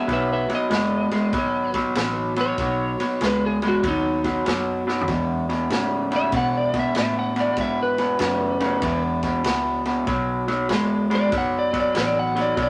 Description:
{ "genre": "electric blues shuffle", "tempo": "96 BPM", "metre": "4/4", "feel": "swing 66% on 8ths", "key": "B mixolydian", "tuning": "A4 = 442 Hz", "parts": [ { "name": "electric slide guitar", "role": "melody", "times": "0.0-12.7 s", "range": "D#4 to F#5", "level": "-27 LUFS", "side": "equal", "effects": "none" }, { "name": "electric guitar through a small old amp", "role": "riff", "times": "0.0-12.7 s", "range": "E2 to G#3", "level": "-24 LUFS", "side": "equal", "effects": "none" }, { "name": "vintage muted fingered electric bass", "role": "bass", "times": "0.1-12.7 s", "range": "F#1 to B2", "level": "-35 LUFS", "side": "equal", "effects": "none" }, { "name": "swinging big-band drum kit", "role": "drums", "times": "0.1-12.7 s", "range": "kick drum, ride cymbal, snare drum, toms", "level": "-33 LUFS", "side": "equal", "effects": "none" } ], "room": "moderate studio reverb, RT60 0.9 s", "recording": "none", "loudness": "-22 LUFS", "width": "mono", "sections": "0.0-12.7 A section", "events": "electric slide guitar solo 0.0-12.7; drum fill 4.8-5.1", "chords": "0.1 B; 5.1 E; 10.1 B5" }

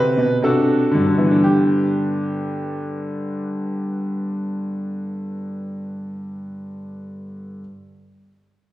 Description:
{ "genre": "classical, baroque-style suite movement for grand piano", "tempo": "61 BPM", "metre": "4/4", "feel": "rubato", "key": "G major", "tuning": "A4 = 440 Hz", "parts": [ { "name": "clear grand piano", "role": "solo", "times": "0.0-7.6 s", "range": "G2 to B4", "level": "-19 LUFS", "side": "equal", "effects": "none" } ], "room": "wet recital hall reverb, RT60 1.7 s", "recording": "heard from further back in the room", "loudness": "-19 LUFS", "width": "side -15 dB against mid", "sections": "0.0-1.4 A section; 1.4-5.3 B section", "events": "slowing down 0.0-1.4", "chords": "0.0 D7; 1.4 G" }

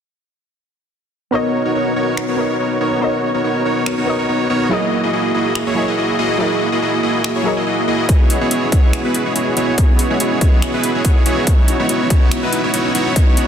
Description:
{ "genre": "future bass", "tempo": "142 BPM", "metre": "4/4", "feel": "swing 54% on 16ths, half-time", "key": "B major", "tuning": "A4 = 440 Hz", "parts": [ { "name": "soft round pluck", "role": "accompaniment", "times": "1.3-8.1 s", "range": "F#3 to D#5", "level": "-22 LUFS", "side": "left 1 dB", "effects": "chorus, sidechain pumping, digital delay" }, { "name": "big bright polysynth", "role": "riff", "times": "1.3-13.5 s", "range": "A#3 to D#5", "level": "-16 LUFS", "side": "right 1 dB", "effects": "sidechain pumping, digital delay" }, { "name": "dubstep drum kit", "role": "drums", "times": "2.2-13.5 s", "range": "finger snaps, hi-hat", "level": "-24 LUFS", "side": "equal", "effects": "soft clipping on snare" }, { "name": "concert harp", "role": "arpeggios", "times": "8.1-13.5 s", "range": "G#3 to C#4", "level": "-24 LUFS", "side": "left 8 dB", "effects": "sidechain pumping, digital delay" }, { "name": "electronic kick drum", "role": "drums", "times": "8.1-13.2 s", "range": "none", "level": "-13 LUFS", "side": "equal", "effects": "distortion" } ], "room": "light reverb", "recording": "dense, heavily limited modern master", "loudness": "-14 LUFS", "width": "side -8 dB against mid", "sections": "1.3-13.5 A section", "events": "filter sweep on analog polysynth 1.3-13.5", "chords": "1.3 Bmaj9; 4.7 F#13; 8.1 E69; 11.5 C#m11" }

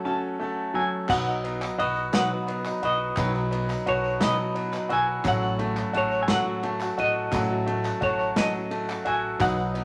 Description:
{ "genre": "indie folk with a building arrangement", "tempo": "58 BPM (dotted quarters)", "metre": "6/8", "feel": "straight", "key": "B mixolydian", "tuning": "A4 = 440 Hz", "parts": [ { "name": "semi-hollow electric guitar", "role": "melody", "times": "0.0-9.8 s", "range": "C#5 to A5", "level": "-30 LUFS", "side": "equal", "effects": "tremolo" }, { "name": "picked swing-style acoustic guitar", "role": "accompaniment", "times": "0.0-9.8 s", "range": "B2 to B4", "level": "-36 LUFS", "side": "equal", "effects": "none" }, { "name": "bright upright piano", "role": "arpeggios", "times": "0.0-9.8 s", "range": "F#3 to F#4", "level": "-31 LUFS", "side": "equal", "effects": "none" }, { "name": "glockenspiel with rubber mallets", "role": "second line", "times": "0.8-9.8 s", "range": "A5 to E6", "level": "-37 LUFS", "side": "equal", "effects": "none" }, { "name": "warm grand piano", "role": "accompaniment", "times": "1.1-9.8 s", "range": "A1 to F#5", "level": "-40 LUFS", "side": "equal", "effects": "none" }, { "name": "upright bass", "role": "bass", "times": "1.1-9.8 s", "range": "A1 to B2", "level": "-36 LUFS", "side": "equal", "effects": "none" }, { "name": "unplugged drum kit", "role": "drums", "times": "1.1-9.8 s", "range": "crash cymbal, kick drum, ride cymbal, snare drum", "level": "-35 LUFS", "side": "equal", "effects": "none" }, { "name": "group handclap", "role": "percussion", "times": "1.1-9.8 s", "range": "none", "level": "-39 LUFS", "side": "equal", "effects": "none" }, { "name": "tambourine", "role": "percussion", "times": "1.1-9.8 s", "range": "none", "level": "-53 LUFS", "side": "equal", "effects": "none" } ], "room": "moderate studio ambience, RT60 0.5 s", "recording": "none", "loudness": "-26 LUFS", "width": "mono", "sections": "0.0-1.1 A section; 1.1-9.8 B section", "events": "break 0.1-1.1", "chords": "0.0 F#m; 1.1 B; 5.3 F#m/A" }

